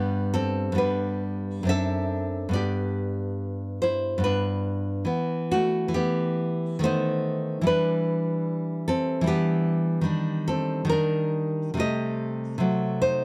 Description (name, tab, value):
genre	romantic piece for solo classical guitar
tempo	64-75 BPM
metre	3/4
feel	rubato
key	unclear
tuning	A4 = 443 Hz
part	nylon-string guitar	solo	0.0-13.2 s	F#2 to E5	-26 LUFS	equal	none
room	small room ambience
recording	dry, close 1970s-style studio recording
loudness	-26 LUFS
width	mono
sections	0.0-13.2 A section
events	none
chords	0.0 G; 1.7 D7/F#; 2.6 G; 5.1 Em; 6.8 B7/D#; 7.7 Em7; 10.1 Ebmaj7; 11.8 Am7b5/C; 12.6 D7/C (rootless)